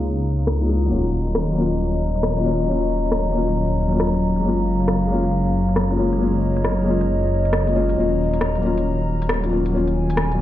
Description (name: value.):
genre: future garage.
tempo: 136 BPM.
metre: 4/4.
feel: swing 65% on 16ths.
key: Eb minor.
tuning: A4 = 439 Hz.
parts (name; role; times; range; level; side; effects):
felt-muted upright piano; accompaniment; 0.0-10.4 s; Gb3 to F4; -23 LUFS; left 3 dB; dub echo.
dark analog pad; sustained chords; 0.0-10.4 s; Gb3 to Bb5; -24 LUFS; equal; chorus.
swelling detuned saw bass; bass; 0.0-10.4 s; Eb1 to Db2; -22 LUFS; equal; none.
organic electronic drum kit; drums; 0.4-10.4 s; hi-hat, rim click; -25 LUFS; left 1 dB; low-pass filter on hats, low-pass filter on snare.
room: moderate digital room reverb, RT60 1.2 s.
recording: played on a big sound system in a bare room, large studio reverb, vinyl crackle, low-pass filter.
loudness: -18 LUFS.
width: side -13 dB against mid.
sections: 0.0-10.4 A section.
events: filter sweep 0.0-10.4.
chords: 0.0 Db6; 0.9 Ebm7; 4.4 Gbmaj7; 8.0 Ebm7.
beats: 0.03 0.47 | 0.91 1.35 1.79 2.23 | 2.67 3.11 3.55 4.00 | 4.44 4.88 5.32 5.76 | 6.20 6.64 7.08 7.53 | 7.97 8.41 8.85 9.29 | 9.73 10.17.